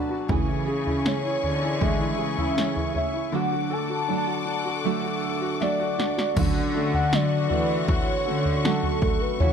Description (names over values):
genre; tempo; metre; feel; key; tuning
pop ballad; 79 BPM; 4/4; straight; unclear; A4 = 440 Hz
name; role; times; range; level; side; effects
clear concert grand piano; accompaniment; 0.0-9.5 s; B2 to F#5; -30 LUFS; left 6 dB; none
warm studio string section; sustained chords; 0.0-9.5 s; F#4 to D6; -32 LUFS; left 5 dB; none
nylon-string guitar; arpeggios; 0.0-9.5 s; C#3 to G#4; -30 LUFS; right 13 dB; none
warm symphonic cello section; bass; 0.3-9.5 s; C#3 to E3; -28 LUFS; equal; none
house drum kit; drums; 0.3-9.5 s; crash cymbal, kick drum, snare drum, toms; -26 LUFS; equal; none
warm velvety synth lead; melody; 1.1-9.5 s; A4 to A5; -28 LUFS; equal; chorus, slapback echo
room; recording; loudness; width
studio reverb; dry, close 1970s-style studio recording; -22 LUFS; side -7 dB against mid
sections
0.0-6.4 A section; 6.4-9.5 B section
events
grand piano fill 5.2-6.4; drum fill 5.6-6.4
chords
0.3 Amaj7/C#; 3.3 D; 6.4 Dmaj7